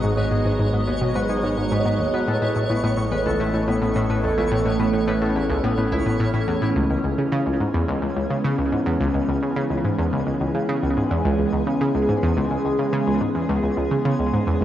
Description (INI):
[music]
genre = ambient, sequencer-driven space music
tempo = 107 BPM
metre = 4/4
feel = straight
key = C# minor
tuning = A4 = 440 Hz
[part]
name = evolving wavetable pad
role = sustained chords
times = 0.0-14.6 s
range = E3 to D#5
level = -23 LUFS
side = right 1 dB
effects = chorus, built-in reverb, phaser
[part]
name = Celtic harp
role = arpeggios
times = 0.0-9.2 s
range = B3 to B4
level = -28 LUFS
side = left 2 dB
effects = auto-pan, analog delay
[part]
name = analog pluck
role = riff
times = 0.0-14.6 s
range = C#2 to C#3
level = -22 LUFS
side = equal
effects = chorus, analog delay
[part]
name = warm sub bass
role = bass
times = 0.0-6.7 s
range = G#1 to A1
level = -32 LUFS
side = equal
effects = none
[part]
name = twinkling granular texture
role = texture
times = 0.0-14.6 s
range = G#4 to C#5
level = -34 LUFS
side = right 1 dB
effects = built-in reverb
[sound]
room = moderate plate reverb, RT60 2.5 s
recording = worn, warbling old tape, cassette tape, warbly pitch drift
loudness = -19 LUFS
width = side -12 dB against mid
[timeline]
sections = 0.0-6.8 A section; 6.8-14.6 B section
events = filter sweep on synth arpeggio sound 0.0-6.8; fade-in on synth texture 6.8-14.6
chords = 0.0 G#m7; 2.3 Aadd9; 6.8 C#m7